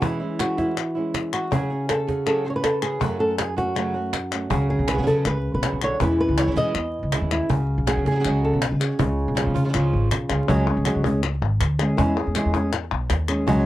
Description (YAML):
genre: flamenco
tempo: 160 BPM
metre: 4/4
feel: straight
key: unclear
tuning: A4 = 440 Hz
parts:
  - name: flamenco guitar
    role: melody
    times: 0.0-13.7 s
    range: F#2 to D#5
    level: -23 LUFS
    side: equal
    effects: slapback echo
  - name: flamenco guitar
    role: stabs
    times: 0.0-10.5 s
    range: B2 to G#4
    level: -29 LUFS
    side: right 4 dB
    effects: none
  - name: cajon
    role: percussion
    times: 0.0-13.7 s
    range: none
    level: -28 LUFS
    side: right 4 dB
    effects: none
  - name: palmas hand claps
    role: percussion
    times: 0.0-13.7 s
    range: none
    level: -28 LUFS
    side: left 11 dB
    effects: none
  - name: upright bass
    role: bass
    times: 4.5-13.7 s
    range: G#1 to E3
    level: -23 LUFS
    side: equal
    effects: none
room: light reverb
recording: dry, close 1970s-style studio recording, vinyl crackle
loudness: -20 LUFS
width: side -14 dB against mid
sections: 0.0-10.5 A section; 10.5-13.7 B section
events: none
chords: 0.0 E6; 1.5 C#sus4; 3.0 F#m; 4.5 C#sus4; 6.0 E6; 7.5 C#sus4; 9.0 C#; 10.5 C#sus4; 12.0 E6